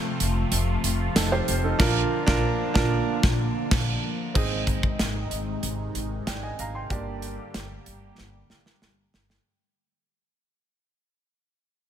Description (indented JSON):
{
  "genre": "1980s-style pop",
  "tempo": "94 BPM",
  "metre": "4/4",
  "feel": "straight",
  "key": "unclear",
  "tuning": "A4 = 440 Hz",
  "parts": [
    { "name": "clear concert grand piano", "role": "accompaniment", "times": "0.0-9.5 s", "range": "Bb3 to C6", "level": "-29 LUFS", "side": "right 4 dB", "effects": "none" },
    { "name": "phased analog pad", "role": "sustained chords", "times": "0.0-9.4 s", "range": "C3 to G4", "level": "-31 LUFS", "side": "left 1 dB", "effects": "phaser, chorus" },
    { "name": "upright bass", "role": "bass", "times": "0.2-9.4 s", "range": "F1 to Bb1", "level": "-29 LUFS", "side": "equal", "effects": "none" },
    { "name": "modern studio drum kit", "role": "drums", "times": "0.2-9.4 s", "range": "crash cymbal, hi-hat, kick drum, snare drum, tambourine", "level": "-26 LUFS", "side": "equal", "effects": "none" }
  ],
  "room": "light reverb, small room ambience",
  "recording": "none",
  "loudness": "-23 LUFS",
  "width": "side -10 dB against mid",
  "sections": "0.0-4.3 A section; 4.3-9.5 B section",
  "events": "band accent 1.8-4.3; fade-out 4.3-9.5; drum fill 8.2-9.5",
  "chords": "0.0 F; 1.8 Bb; 4.3 Ab; 6.9 Gm"
}